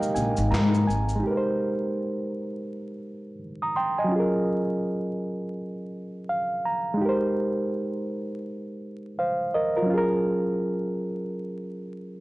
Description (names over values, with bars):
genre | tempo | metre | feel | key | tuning
lo-fi hip hop | 83 BPM | 4/4 | swing 62% on 16ths | unclear | A4 = 439 Hz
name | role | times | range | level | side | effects
barky reed electric piano | accompaniment | 0.0-12.2 s | Gb3 to Eb6 | -25 LUFS | right 1 dB | overdrive, cassette tape, low-pass filter
lush unison pad | sustained chords | 0.0-1.2 s | C3 to Bb4 | -40 LUFS | equal | chorus, phaser, low-pass filter
dusty soul sampler-style drum kit | drums | 0.0-1.2 s | handclaps, hi-hat, shaker, snare drum | -32 LUFS | equal | vintage 12-bit sampler grit
upright bass | bass | 0.2-1.2 s | Ab1 to Ab2 | -23 LUFS | left 1 dB | none
room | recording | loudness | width
light reverb, digital ambience | dry, gritty hardware recording, vinyl crackle, nothing above 10.9 kHz | -24 LUFS | side -19 dB against mid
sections
0.0-1.2 A section; 1.2-12.2 B section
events
break 0.0-1.2; reed electric piano fill 0.0-1.2, 5.9-7.0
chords
0.0 Abmaj9; 4.1 Gbmaj9; 7.0 Abmaj9; 9.9 Gbmaj9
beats
0.51 | 1.23 1.96 2.68 3.40 | 4.12 4.85 5.57 6.29 | 7.02 7.74 8.46 9.19 | 9.91 10.63 11.35 12.08